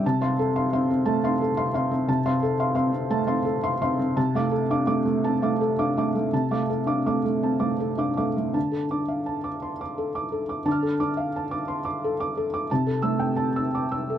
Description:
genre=neoclassical minimalist piano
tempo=52-59 BPM (dotted quarters)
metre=6/8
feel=rubato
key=unclear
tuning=A4 = 440 Hz
part: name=felt-muted upright piano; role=solo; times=0.0-14.2 s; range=C3 to F6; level=-22 LUFS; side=equal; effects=none
room=light reverb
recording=dark, warm production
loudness=-22 LUFS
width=side -10 dB against mid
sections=0.0-8.6 A section; 8.6-14.2 B section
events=none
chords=0.0 F/C; 4.2 Dm/C; 8.6 Dm; 12.7 C6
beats=| 0.03 1.05 | 2.08 3.11 | 4.16 5.23 | 6.32 7.42 | 8.55 9.62 | 10.66 11.68 | 12.70 13.74

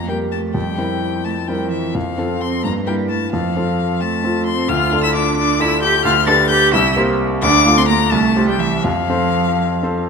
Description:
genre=quick classical-period movement for piano trio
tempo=87 BPM (dotted quarters)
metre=6/8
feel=rubato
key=F major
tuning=A4 = 440 Hz
part: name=warm violin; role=melody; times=0.0-10.1 s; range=E5 to A6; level=-19 LUFS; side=left 9 dB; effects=none
part: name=warm cello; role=second line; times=0.0-10.1 s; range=E3 to A4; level=-20 LUFS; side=right 6 dB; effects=none
part: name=clear concert grand piano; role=accompaniment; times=0.0-10.1 s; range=C2 to F5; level=-18 LUFS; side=equal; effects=none
room=wet scoring stage reverb, RT60 1.6 s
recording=none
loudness=-14 LUFS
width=side -5 dB against mid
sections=0.0-10.1 A section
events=none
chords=0.0 Gm7/F; 0.5 C7/F; 1.9 F; 2.6 Edim/G; 3.3 F; 4.7 Dm; 6.0 G/D; 6.7 C5; 7.4 Dm; 8.1 C5; 8.8 F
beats=| 0.55 1.25 | 1.95 2.64 | 3.33 4.01 | 4.69 5.37 | 6.05 6.73 | 7.42 8.12 | 8.84 9.58

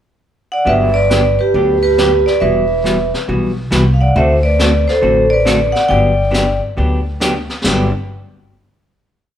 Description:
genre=country, western swing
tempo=138 BPM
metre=4/4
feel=swing 66% on 8ths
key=G major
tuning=A4 = 439 Hz
part: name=vibraphone with hard mallets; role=melody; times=0.5-6.6 s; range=G4 to G5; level=-13 LUFS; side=right 1 dB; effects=none
part: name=hollow-body jazz guitar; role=accompaniment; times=0.7-7.9 s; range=G2 to A4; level=-19 LUFS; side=left 1 dB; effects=none
part: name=upright bass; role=bass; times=0.7-7.9 s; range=E1 to D2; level=-17 LUFS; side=equal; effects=none
part: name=jazz brush drum kit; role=drums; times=0.7-8.0 s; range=brushed snare drum, hi-hat, snare drum, splash cymbal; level=-21 LUFS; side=equal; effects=none
room=moderate large studio reverb, RT60 1.1 s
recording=band playing live in one room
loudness=-11 LUFS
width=side -10 dB against mid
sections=0.0-0.7 pickup bar; 0.7-7.6 A section; 7.6-9.4 final chord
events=none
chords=0.0 N.C.; 0.7 Gmaj7; 2.4 Emadd9; 4.2 D7; 5.9 Gmaj7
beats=0.23 | 0.67 1.10 1.54 1.97 | 2.41 2.85 3.28 3.72 | 4.15 4.59 5.02 5.46 | 5.89 6.33 6.76 7.20 | 7.64

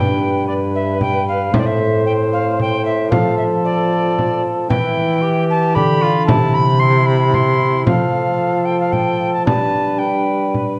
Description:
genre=classical, renaissance-style consort dance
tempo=114 BPM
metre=3/4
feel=straight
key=G mixolydian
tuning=A4 = 439 Hz
part: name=mellow alto recorder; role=melody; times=0.0-10.5 s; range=D5 to C6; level=-23 LUFS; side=equal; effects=none
part: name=mellow cor anglais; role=second line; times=0.0-10.8 s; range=E4 to C5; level=-25 LUFS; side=equal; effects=none
part: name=concert harp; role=accompaniment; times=0.0-10.8 s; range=G2 to C5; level=-22 LUFS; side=equal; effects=none
part: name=dark bassoon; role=bass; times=0.0-10.8 s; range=G2 to G3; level=-22 LUFS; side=equal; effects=none
part: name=frame drum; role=percussion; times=1.0-10.8 s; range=none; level=-24 LUFS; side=equal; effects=none
room=wet recital hall reverb, RT60 1.4 s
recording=nothing above 10.6 kHz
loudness=-16 LUFS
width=mono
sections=0.0-10.8 A section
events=none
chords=0.0 G; 1.5 Am; 3.1 F; 4.7 Em; 6.3 C; 7.9 F; 9.5 G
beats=0.47 1.00 | 1.53 2.06 2.59 | 3.12 3.65 4.17 | 4.70 5.23 5.75 | 6.28 6.81 7.33 | 7.86 8.39 8.93 | 9.46 10.00 10.54

